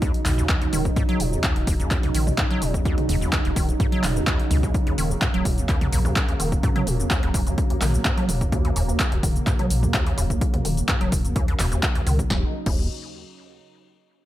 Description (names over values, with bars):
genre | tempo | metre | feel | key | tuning
acid house | 127 BPM | 4/4 | straight | Eb minor pentatonic | A4 = 440 Hz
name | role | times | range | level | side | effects
warm analog pad | sustained chords | 0.0-12.5 s | Db3 to Eb4 | -29 LUFS | right 2 dB | lush chorus, sidechain pumping
acid bass, square | riff | 0.0-12.9 s | Eb1 to Gb3 | -26 LUFS | equal | overdrive, analog chorus, sidechain pumping, ping-pong delay
electronic kick drum | drums | 0.0-12.8 s | none | -23 LUFS | equal | overdrive, small room ambience
punchy analog drum machine | drums | 0.0-12.8 s | crash cymbal, handclaps, hi-hat, shaker, snare drum, toms | -27 LUFS | equal | overdrive, small room ambience
warm sub bass | bass | 0.3-12.9 s | Eb1 to Db2 | -25 LUFS | equal | sidechain pumping
room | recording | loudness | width
little or no reverb | none | -20 LUFS | side -14 dB against mid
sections
0.0-12.3 A section; 12.3-14.2 B section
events
filter sweep on acid bass 0.0-12.3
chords
0.0 Ebm7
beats
0.02 0.49 | 0.96 1.44 1.91 2.38 | 2.85 3.33 3.80 4.27 | 4.74 5.22 5.69 6.16 | 6.63 7.11 7.58 8.05 | 8.52 9.00 9.47 9.94 | 10.41 10.89 11.36 11.83 | 12.30 12.78